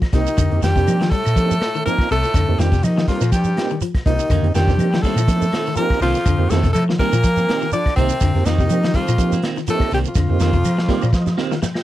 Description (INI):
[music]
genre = afrobeat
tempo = 123 BPM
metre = 4/4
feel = swing 54% on 16ths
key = F mixolydian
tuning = A4 = 440 Hz
[part]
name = electric guitar at the edge of break-up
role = arpeggios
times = 0.0-11.8 s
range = C3 to G3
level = -26 LUFS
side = left 6 dB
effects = tape echo
[part]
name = crunchy breakbeat drum kit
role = drums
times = 0.0-11.8 s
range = hi-hat, kick drum, snare drum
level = -21 LUFS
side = equal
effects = none
[part]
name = claves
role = percussion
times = 0.0-11.8 s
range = none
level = -42 LUFS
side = left 10 dB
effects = none
[part]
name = edgy tenor saxophone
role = melody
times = 0.1-11.6 s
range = C4 to D5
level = -22 LUFS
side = equal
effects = none
[part]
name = raspy baritone saxophone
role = second line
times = 0.1-11.6 s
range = C2 to D3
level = -30 LUFS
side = left 8 dB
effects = none
[part]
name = tonewheel organ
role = accompaniment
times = 0.1-11.8 s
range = Bb3 to G5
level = -26 LUFS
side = right 10 dB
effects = slow rotary speaker, chorus vibrato
[part]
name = hollow-body short-scale fingered electric bass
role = bass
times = 0.1-11.3 s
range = C2 to F3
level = -18 LUFS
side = equal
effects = none
[part]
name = shekere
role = percussion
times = 0.1-11.8 s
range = none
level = -28 LUFS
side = right 5 dB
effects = none
[part]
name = bright trombone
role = second line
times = 0.2-11.6 s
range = C3 to D4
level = -30 LUFS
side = right 4 dB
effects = none
[part]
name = semi-hollow electric guitar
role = stabs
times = 4.3-11.5 s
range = Eb3 to C4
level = -27 LUFS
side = right 8 dB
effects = none
[sound]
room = little or no reverb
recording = dry, close 1970s-style studio recording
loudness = -15 LUFS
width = side -14 dB against mid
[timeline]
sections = 0.0-11.8 A section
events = tonewheel organ fill 10.6-11.8; drum fill 11.1-11.8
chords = 0.0 F7sus4